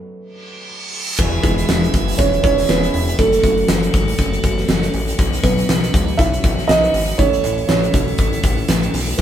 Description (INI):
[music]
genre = piano-driven pop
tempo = 120 BPM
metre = 4/4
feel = swing 56% on 16ths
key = unclear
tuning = A4 = 444 Hz
[part]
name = felt-muted upright piano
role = accompaniment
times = 0.0-9.2 s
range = E3 to E5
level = -19 LUFS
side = right 3 dB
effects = none
[part]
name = reverse cymbal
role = sound effects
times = 0.4-1.2 s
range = none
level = -25 LUFS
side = right 3 dB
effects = none
[part]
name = tonewheel organ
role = sustained chords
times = 1.2-9.2 s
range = E3 to B4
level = -26 LUFS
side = left 1 dB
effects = overdrive, slow rotary speaker
[part]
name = fat analog bass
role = bass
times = 1.2-9.2 s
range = E1 to C#2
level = -22 LUFS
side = left 1 dB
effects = none
[part]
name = huge arena drum kit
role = drums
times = 1.2-9.2 s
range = crash cymbal, hi-hat, kick drum, snare drum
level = -17 LUFS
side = left 1 dB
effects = none
[sound]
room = moderate studio reverb, RT60 0.6 s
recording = band playing live in one room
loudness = -14 LUFS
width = side -10 dB against mid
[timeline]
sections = 0.0-1.2 A section; 1.2-9.2 B section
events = felt piano solo 0.0-1.2, 1.2-9.2; stop 0.0-1.2; reverse cymbal 0.4-1.2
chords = 0.0 B; 1.2 E; 3.2 F#m; 5.2 Bsus2; 7.2 A